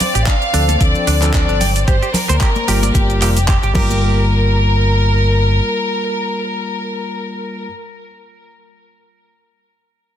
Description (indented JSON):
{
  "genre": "nu-disco, nu disco",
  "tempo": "112 BPM",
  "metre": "4/4",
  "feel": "swing 56% on 16ths",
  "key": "G minor",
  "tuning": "A4 = 440 Hz",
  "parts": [
    { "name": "warm studio violin section", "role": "melody", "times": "0.0-7.7 s", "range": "G4 to F5", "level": "-20 LUFS", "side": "left 1 dB", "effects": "ping-pong delay" },
    { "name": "rich studio string section", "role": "sustained chords", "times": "0.0-3.8 s", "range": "C4 to D5", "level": "-29 LUFS", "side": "left 1 dB", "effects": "sidechain pumping" },
    { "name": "pop drum kit", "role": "drums", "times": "0.0-3.9 s", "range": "crash cymbal, handclaps, hi-hat, shaker", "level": "-22 LUFS", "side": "right 2 dB", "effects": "overdrive" },
    { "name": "congas and maracas", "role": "percussion", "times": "0.0-4.0 s", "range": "none", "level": "-25 LUFS", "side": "left 1 dB", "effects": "none" },
    { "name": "fingered electric bass", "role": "bass", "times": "0.1-5.6 s", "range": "F1 to D2", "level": "-15 LUFS", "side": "equal", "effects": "none" },
    { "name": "direct-recorded clean electric guitar", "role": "riff", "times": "0.2-4.3 s", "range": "D4 to G5", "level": "-25 LUFS", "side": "right 6 dB", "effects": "analog chorus, ping-pong delay" },
    { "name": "electronic kick drum", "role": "drums", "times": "0.3-3.9 s", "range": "none", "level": "-16 LUFS", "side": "equal", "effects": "overdrive" },
    { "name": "bell-like tine electric piano", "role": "accompaniment", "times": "0.5-7.7 s", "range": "F3 to Bb4", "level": "-23 LUFS", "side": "left 1 dB", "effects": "sidechain pumping, ping-pong delay" }
  ],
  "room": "digital ambience",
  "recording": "dense, heavily limited modern master",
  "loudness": "-13 LUFS",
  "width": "side -10 dB against mid",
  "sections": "0.0-4.0 A section; 4.0-8.3 B section",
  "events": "drop 0.0-4.0",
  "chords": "0.0 Dm7; 1.6 Gm7"
}